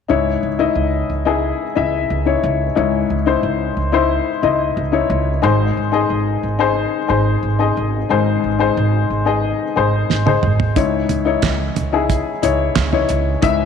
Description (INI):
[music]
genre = piano-driven pop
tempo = 90 BPM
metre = 4/4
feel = straight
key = C# harmonic minor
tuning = A4 = 441 Hz
[part]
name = warm upright piano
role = accompaniment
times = 0.1-13.7 s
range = G#2 to E5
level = -17 LUFS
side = left 7 dB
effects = none
[part]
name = upright bass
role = bass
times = 0.1-13.7 s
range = G#1 to C#2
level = -20 LUFS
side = right 2 dB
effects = none
[part]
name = damped 70s drum kit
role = drums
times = 10.1-13.6 s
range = handclaps, hi-hat, kick drum, snare drum, toms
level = -20 LUFS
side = right 6 dB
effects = none
[sound]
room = moderate echo chamber reverb, RT60 2.2 s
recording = 1960s-style stereo with parts hard left and right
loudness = -15 LUFS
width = side -7 dB against mid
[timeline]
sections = 0.1-13.7 A section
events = drum fill 10.1-10.8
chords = 0.1 C#madd9; 5.4 G#; 10.8 C#madd9